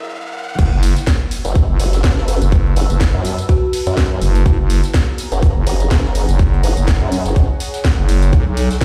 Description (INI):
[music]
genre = bass house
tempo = 124 BPM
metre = 4/4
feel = swing 56% on 16ths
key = unclear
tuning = A4 = 441 Hz
[part]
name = dark analog pad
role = sustained chords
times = 0.0-8.8 s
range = F#3 to A#4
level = -43 LUFS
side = equal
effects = none
[part]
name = riser and impact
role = sound effects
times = 0.0-2.5 s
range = none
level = -28 LUFS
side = equal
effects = none
[part]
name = growling FM bass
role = bass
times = 0.6-8.7 s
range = F#1 to B1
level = -17 LUFS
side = equal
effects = overdrive, sidechain pumping
[part]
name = electronic kick drum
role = drums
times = 0.6-8.8 s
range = none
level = -16 LUFS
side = equal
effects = high-pass filter on kick
[part]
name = garage drum kit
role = drums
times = 0.6-8.8 s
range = crash cymbal, hi-hat, snare drum, tambourine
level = -27 LUFS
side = equal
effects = none
[part]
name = jazz brush drum kit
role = drums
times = 0.6-8.8 s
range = hi-hat, snare drum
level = -40 LUFS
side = equal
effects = none
[part]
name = warbly tape-like pad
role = texture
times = 1.0-8.8 s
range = D#4 to E6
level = -31 LUFS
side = equal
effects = chorus, built-in reverb, sidechain pumping
[part]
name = formant-sweep wobble bass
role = bass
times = 1.4-7.5 s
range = F#1 to F#2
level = -19 LUFS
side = equal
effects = chorus, tube saturation, sidechain pumping
[part]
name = kalimba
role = melody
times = 2.3-4.2 s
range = F#4 to A4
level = -28 LUFS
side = equal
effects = none
[sound]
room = digital ambience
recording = played on a big sound system in a bare room, stone room reverb, high-pass filter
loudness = -15 LUFS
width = mono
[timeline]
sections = 0.6-8.8 A section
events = break 0.0-0.6; riser 0.0-0.6; drop 0.6-8.8; impact 0.6-2.5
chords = 0.0 F#7; 0.6 F#m7; 4.5 F#7; 8.3 B